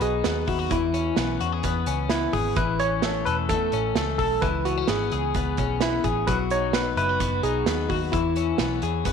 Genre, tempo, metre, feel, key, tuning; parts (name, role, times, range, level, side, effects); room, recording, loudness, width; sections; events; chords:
jangly indie pop; 129 BPM; 4/4; straight; E major; A4 = 441 Hz
tine electric piano; melody; 0.0-8.8 s; E4 to C#5; -26 LUFS; right 1 dB; medium stereo tremolo
twelve-string electric guitar; arpeggios; 0.0-9.1 s; E3 to A4; -27 LUFS; left 10 dB
vintage muted picked electric bass; bass; 0.0-9.1 s; E1 to E2; -29 LUFS; right 1 dB
loose indie drum kit; drums; 0.0-9.1 s; hi-hat, kick drum, snare drum; -28 LUFS; right 5 dB
moderate echo chamber reverb, RT60 1.4 s, small room ambience; 1960s-style stereo; -22 LUFS; side -6 dB against mid
0.0-9.1 A section
0.0 B; 0.7 E6; 2.6 A; 4.4 C#m7; 6.3 B; 8.1 E6